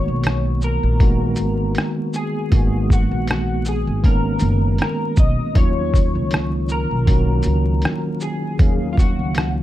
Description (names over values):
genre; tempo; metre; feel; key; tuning
lo-fi hip hop; 79 BPM; 4/4; swing 56% on 16ths; unclear; A4 = 439 Hz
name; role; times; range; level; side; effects
electric guitar through a small old amp; melody; 0.0-9.5 s; F4 to Eb5; -27 LUFS; left 2 dB; analog chorus
tine electric piano; accompaniment; 0.0-9.6 s; Eb3 to F5; -22 LUFS; equal; fast stereo tremolo, cassette tape
upright bass; bass; 0.0-9.6 s; Gb1 to Eb2; -21 LUFS; equal; none
lo-fi sampler-style drum kit; drums; 0.2-9.6 s; hi-hat, kick drum, rim click, shaker; -17 LUFS; equal; none
room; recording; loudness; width
light reverb; dark, warm production, vinyl crackle; -16 LUFS; side -14 dB against mid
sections
0.0-9.6 A section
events
none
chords
0.0 Abm9; 5.6 Ebm9